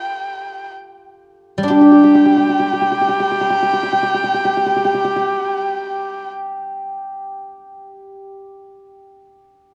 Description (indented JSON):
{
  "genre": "chinese traditional, Chinese chamber ensemble",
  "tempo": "63 BPM",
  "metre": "4/4",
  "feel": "rubato",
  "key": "unclear",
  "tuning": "A4 = 440 Hz",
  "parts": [
    { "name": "dark erhu", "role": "melody", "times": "0.0-6.3 s", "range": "G5", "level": "-23 LUFS", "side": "equal", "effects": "none" },
    { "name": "hammered dulcimer", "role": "second line", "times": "0.0-8.3 s", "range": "G4", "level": "-23 LUFS", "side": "equal", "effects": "none" },
    { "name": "guzheng", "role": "accompaniment", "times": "1.6-7.6 s", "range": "G3 to G4", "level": "-13 LUFS", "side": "equal", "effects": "none" }
  ],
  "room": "moderate concert hall reverb, RT60 2.2 s",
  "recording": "dark, warm production",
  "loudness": "-15 LUFS",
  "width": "mono",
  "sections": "0.0-1.7 A section; 1.7-5.5 B section",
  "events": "slowing down 0.0-1.7",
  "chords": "none"
}